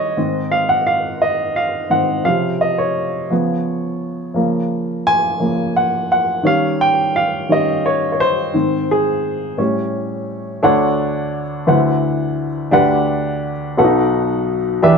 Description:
gospel; 57 BPM (dotted quarters); 6/8; straight; Db major, D major from 10.6 s; A4 = 440 Hz
warm upright piano; solo; 0.0-15.0 s; B1 to Ab5; -15 LUFS; equal
moderate stone room reverb, RT60 0.9 s; band playing live in one room; -15 LUFS; side -5 dB against mid
0.0-10.6 A section; 10.6-15.0 B section
upright piano solo 0.0-10.6
0.2 Ab; 2.3 Dbmaj7; 3.3 Db7; 4.4 Db6; 6.4 Eb7; 8.5 Ab; 9.6 A7; 10.6 Dmaj7; 11.7 D13; 12.7 Gmaj7/D; 13.8 B7

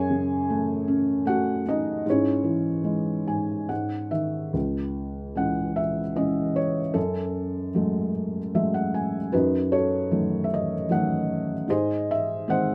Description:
classical, lyrical solo piano; 76 BPM; 3/4; rubato; C# minor; A4 = 440 Hz
felt-muted upright piano; solo; 0.0-12.7 s; C#2 to G#5; -25 LUFS; equal
light reverb; close, detailed microphones; -26 LUFS; mono
0.0-4.5 A section; 4.5-12.7 B section
felt piano fill 2.9-4.5, 8.1-9.3
0.0 F#m; 2.1 C#m/G#; 3.7 G#5; 4.5 C#m; 7.0 F#madd9; 9.3 D#dim/F#; 11.7 G#

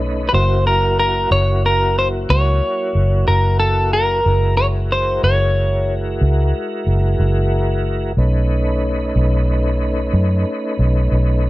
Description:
slow blues; 61 BPM (dotted quarters); 12/8; straight; F# mixolydian; A4 = 442 Hz
tonewheel organ; sustained chords; 0.0-11.5 s; F#3 to B4; -22 LUFS; equal; slow rotary speaker, chorus vibrato
vintage muted fingered electric bass; bass; 0.0-11.5 s; F#1 to F#2; -16 LUFS; equal
clean electric guitar; melody; 0.3-5.9 s; A4 to C#5; -17 LUFS; left 1 dB
light reverb; -14 LUFS; side -18 dB against mid
0.0-11.5 A section
0.3 F#9; 8.2 B9

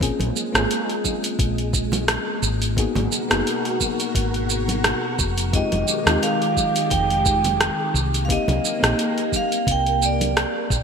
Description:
sunset chillout; 87 BPM; 4/4; swing 55% on 16ths; A4 = 442 Hz
mellow FM electric piano; accompaniment; 0.0-10.7 s; Ab3 to Ab4; -27 LUFS; moving between left 7 dB and equal; chorus, auto-pan, digital delay
soft string machine; sustained chords; 0.0-10.8 s; Cb3 to Bb4; -27 LUFS; equal; phaser, ensemble chorus
woody fretless electric bass; bass; 0.0-10.8 s; F1 to Eb2; -24 LUFS; equal
deep house drum kit; drums; 0.0-10.8 s; hi-hat, rim click, shaker; -23 LUFS; right 1 dB; gated reverb
electronic kick drum; drums; 0.0-10.8 s; -25 LUFS; equal
congas; percussion; 0.2-10.3 s; -32 LUFS; right 3 dB
vibraphone with medium hard mallets; melody; 5.5-10.7 s; D5 to G5; -23 LUFS; right 3 dB; digital delay
moderate lush hall reverb, RT60 2.7 s; bright 1980s-style digital production; -19 LUFS; side -6 dB against mid
0.0-10.8 A section
0.0 Bbm9; 2.8 Abm9; 5.5 Fm9; 7.9 Cm9

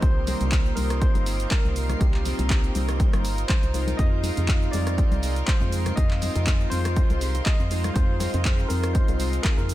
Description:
deep house; 121 BPM; 4/4; swing 55% on 16ths; A4 = 440 Hz
overdriven tine electric piano; melody; 0.0-9.7 s; G4 to Eb5; -34 LUFS; equal; fast tremolo, dub echo
airy breathy pad; sustained chords; 0.0-9.7 s; Ab4 to Eb6; -40 LUFS; equal; chorus, sidechain pumping
chorused polysynth; stabs; 0.0-9.7 s; Eb3 to G4; -32 LUFS; equal; sidechain pumping, ping-pong delay
organ-like FM bass; bass; 0.0-9.7 s; G1 to F2; -26 LUFS; equal; sidechain pumping
electronic kick drum; drums; 0.0-9.6 s; -22 LUFS; equal
punchy analog drum machine; drums; 0.0-9.7 s; handclaps, hi-hat, rim click, shaker; -32 LUFS; equal
dark studio string section; texture; 0.0-9.7 s; Eb4 to Bb4; -38 LUFS; right 2 dB; sidechain pumping
string machine, violins; texture; 0.0-9.7 s; C5 to C6; -41 LUFS; right 1 dB; ensemble chorus, sidechain pumping
congas; percussion; 0.3-9.7 s; -36 LUFS; left 5 dB; sidechain pumping on perc
little or no reverb; -21 LUFS; side -15 dB against mid
0.0-9.7 A section
0.0 Cm7; 4.0 Fm7

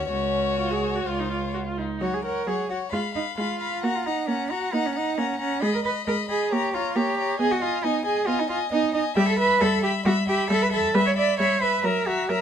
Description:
quick classical-period movement for string quartet; 134 BPM; 4/4; rubato; F# major; A4 = 440 Hz
warm violin; melody; 0.0-12.4 s; C#5 to B5; -30 LUFS; left 8 dB
rich violin; second line; 0.0-12.4 s; E#4 to F#5; -31 LUFS; left 4 dB
rich viola; accompaniment; 0.0-12.4 s; F#3 to G#4; -27 LUFS; equal
rich cello; bass; 0.0-12.4 s; C#2 to D5; -25 LUFS; right 3 dB
moderate studio reverb, RT60 0.8 s; dark, warm production; -22 LUFS; side -8 dB against mid
0.0-2.0 A section; 2.0-12.4 B section
0.1 C#sus4; 1.1 C#; 2.0 F#; 2.9 Fdim/Ab; 3.8 F#/A#; 5.6 G#m; 6.5 Gdim/Bb; 7.4 G#m/B; 9.2 Em/G; 11.0 C#m7b5/G; 11.8 F#7

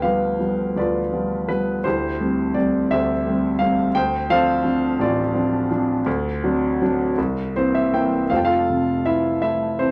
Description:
classical, lyrical solo piano; 53-58 BPM (dotted quarters); 6/8; rubato; D dorian; A4 = 440 Hz
warm concert grand piano; solo; 0.0-9.9 s; F1 to G5; -21 LUFS; equal
moderate studio reverb, RT60 0.6 s; -21 LUFS; mono
0.0-8.3 A section; 8.3-9.9 B section
grand piano fill 7.2-8.3
0.0 G7/D; 1.9 Am7/D; 3.9 Dm7; 6.1 D7; 7.2 C7; 8.3 Fmaj7

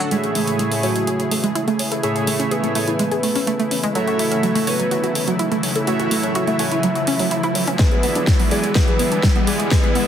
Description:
progressive house; 125 BPM; 4/4; straight; A major; A4 = 440 Hz
lush unison pad; sustained chords; 0.0-10.1 s; C#3 to G#4; -25 LUFS; equal; chorus, sidechain pumping
analog pluck; arpeggios; 0.0-10.0 s; F#3 to D5; -23 LUFS; right 1 dB; chorus, sidechain pumping, dub echo
soft supersaw; stabs; 0.0-10.1 s; A2 to G#5; -24 LUFS; right 2 dB; sidechain pumping, low-pass filter, dub echo
soft octave-layered synth lead; melody; 0.1-10.1 s; F#4 to E5; -25 LUFS; left 1 dB; chorus, sidechain pumping, dub echo
dark detuned saw bass; bass; 0.1-10.1 s; barely audible
big-room dance drum kit; drums; 0.1-10.1 s; hi-hat, snare drum; -25 LUFS; right 1 dB
riser; sound effects; 2.0-10.1 s; -28 LUFS; left 1 dB
electronic kick drum; drums; 7.8-9.8 s; -17 LUFS; left 1 dB
moderate digital room reverb, RT60 1.2 s, digital ambience; dense, heavily limited modern master; -16 LUFS; side -9 dB against mid
0.1-10.1 A section
build-up 0.1-10.1; filter sweep on supersaw synth 0.1-10.1; riser 2.0-10.1; drum fill 7.8-10.1
0.1 Amaj7; 4.0 F#m7; 7.8 E7

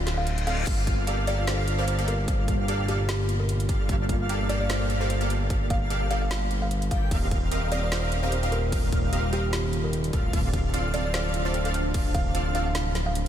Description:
future bass; 149 BPM; 4/4; swing 55% on 16ths, half-time; G minor; A4 = 440 Hz
ethereal airy pad; sustained chords; 0.0-13.3 s; Bb2 to F4; -36 LUFS; left 1 dB; ensemble chorus, built-in reverb, sidechain pumping
fat analog bass; bass; 0.0-13.3 s; D1 to G1; -27 LUFS; equal; sidechain pumping
reverse cymbal; sound effects; 0.0-0.7 s; -37 LUFS; left 5 dB
trap drum kit; drums; 0.1-13.2 s; crash cymbal, hi-hat, snare drum; -35 LUFS; right 1 dB; small room ambience
buzzing kalimba; melody; 0.2-13.2 s; G4 to F5; -34 LUFS; equal; sidechain pumping, ping-pong delay
airy dreamy lead; arpeggios; 0.5-12.6 s; F5 to G5; -36 LUFS; equal; chorus, sidechain pumping
supersaw stab; riff; 0.5-12.6 s; Bb3 to G5; -32 LUFS; right 1 dB; analog chorus, sidechain pumping, ping-pong delay
electronic kick drum; drums; 0.7-12.2 s; -27 LUFS; equal; small room ambience
light reverb, digital ambience; -23 LUFS; side -10 dB against mid
0.0-13.3 A section
reverse cymbal 0.0-0.7; kick drops out 0.3-0.7
0.0 Dm7; 0.7 Gm9; 7.1 Eb69; 10.1 Dm7

